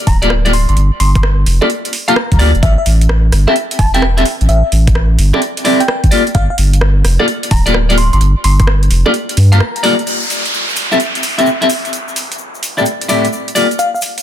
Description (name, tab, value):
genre	UK garage, two-step garage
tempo	129 BPM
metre	4/4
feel	swing 66% on 16ths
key	G dorian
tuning	A4 = 440 Hz
part	bell-like FM electric piano	melody	0.1-9.8, 13.8-14.0 s	E5 to C6	-21 LUFS	left 1 dB	chorus, tremolo, cassette tape, tape echo
part	saturated sub bass	bass	0.1-9.6 s	D1 to G2	-10 LUFS	equal	sidechain pumping
part	electronic kick drum	drums	0.1-8.7 s	none	-12 LUFS	equal	overdrive, small room ambience
part	garage drum kit	drums	0.1-14.2 s	bongos, hi-hat, rim click	-20 LUFS	right 3 dB	overdrive, small room ambience
part	clean electric guitar	stabs	0.2-13.7 s	A2 to F5	-14 LUFS	left 1 dB	tape echo
part	egg shaker	percussion	10.1-14.2 s	none	-26 LUFS	left 5 dB	none
part	downlifter	sound effects	10.1-13.8 s	none	-20 LUFS	equal	none
room	digital ambience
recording	dense, heavily limited modern master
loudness	-10 LUFS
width	side -11 dB against mid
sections	0.0-10.1 A section; 10.1-14.2 B section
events	break 9.6-10.1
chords	0.0 G7sus2; 2.6 A7(no3); 4.3 Dsus4/A (rootless); 6.1 G7sus2; 10.1 Am7; 11.7 D9sus4; 13.6 Gm9